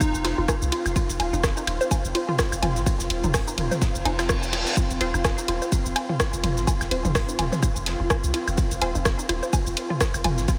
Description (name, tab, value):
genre	minimal techno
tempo	126 BPM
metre	4/4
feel	swing 57% on 16ths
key	unclear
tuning	A4 = 436 Hz
part	plucky unison lead	melody	0.0-0.6 s	Eb4	-36 LUFS	equal	analog delay
part	breakbeat sampler-style drum kit	drums	0.0-10.6 s	hi-hat, ride cymbal, snare drum	-40 LUFS	equal	none
part	electronic kick drum	drums	0.0-10.6 s	none	-27 LUFS	equal	studio reverb
part	house drum kit	drums	0.0-10.6 s	hi-hat, rim click, shaker	-32 LUFS	equal	studio reverb
part	electronic woodblock and toms	percussion	0.0-10.4 s	none	-33 LUFS	equal	overdrive, studio reverb, analog delay
part	ethereal airy pad	texture	0.0-10.6 s	C4 to C6	-34 LUFS	equal	ensemble chorus, built-in reverb, sidechain pumping
part	punchy sub bass	bass	0.1-10.5 s	Eb1 to C2	-31 LUFS	equal	sidechain pumping
part	hollow square pluck	riff	0.2-10.6 s	Eb4 to C5	-34 LUFS	equal	chorus, phaser, sidechain pumping, analog delay
part	reverse cymbal	sound effects	4.0-4.8 s	none	-36 LUFS	equal	none
part	filtered dub chord stab	stabs	5.0-8.9 s	C4 to C5	-38 LUFS	equal	none
room	moderate huge ambient reverb, RT60 7.7 s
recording	dreamy mix soaked in reverb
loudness	-24 LUFS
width	mono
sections	0.0-10.6 A section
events	reverse cymbal 4.0-4.8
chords	0.0 F5